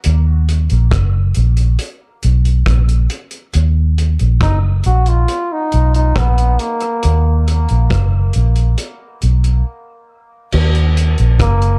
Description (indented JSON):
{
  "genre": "dub reggae",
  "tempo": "69 BPM",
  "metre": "4/4",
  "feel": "straight",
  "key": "Eb minor",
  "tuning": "A4 = 440 Hz",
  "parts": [
    { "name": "cloth-damped thuddy drum kit", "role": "drums", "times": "0.0-11.8 s", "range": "crash cymbal, hi-hat, kick drum, rim click", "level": "-24 LUFS", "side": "equal", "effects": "none" },
    { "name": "vintage muted fingered electric bass", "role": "bass", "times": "0.1-11.8 s", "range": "Gb1 to Eb2", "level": "-14 LUFS", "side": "equal", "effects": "none" },
    { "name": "brilliant trombone", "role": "melody", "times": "4.4-11.8 s", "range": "Bb3 to Gb4", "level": "-24 LUFS", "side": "equal", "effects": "dub echo" }
  ],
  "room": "studio reverb",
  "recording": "dark, warm production",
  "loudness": "-15 LUFS",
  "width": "mono",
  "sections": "0.0-10.5 A section; 10.5-11.8 B section",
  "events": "break 0.0-3.5, 9.7-10.5",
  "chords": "0.0 Ebm; 1.8 N.C.; 3.5 Ebm; 5.3 Bmaj7; 7.0 Ebm; 8.8 N.C.; 10.5 Ebm"
}